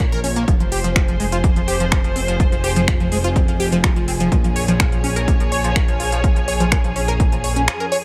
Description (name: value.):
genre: melodic techno.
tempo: 125 BPM.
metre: 4/4.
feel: straight.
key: F minor.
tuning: A4 = 441 Hz.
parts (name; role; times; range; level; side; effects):
tight sequenced synth; arpeggios; 0.0-8.0 s; F3 to Db5; -25 LUFS; equal; chorus, phaser, sidechain pumping, tape echo.
fat analog bass; bass; 0.0-7.7 s; F1 to Bb1; -25 LUFS; equal; tube saturation, sidechain pumping.
bowed-like drone; drone; 0.1-8.0 s; F2 to F3; -34 LUFS; equal; none.
electronic kick drum; drums; 0.0-7.3 s; none; -20 LUFS; equal; none.
techno drum kit; drums; 0.0-8.0 s; finger snaps, hi-hat; -26 LUFS; equal; none.
dark symphonic string section; texture; 0.0-8.0 s; Ab4 to Db5; -28 LUFS; equal; sidechain pumping.
room: light reverb.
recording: none.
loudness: -18 LUFS.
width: mono.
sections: 0.0-8.0 A section.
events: none.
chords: 0.5 Fm; 4.3 Bbm.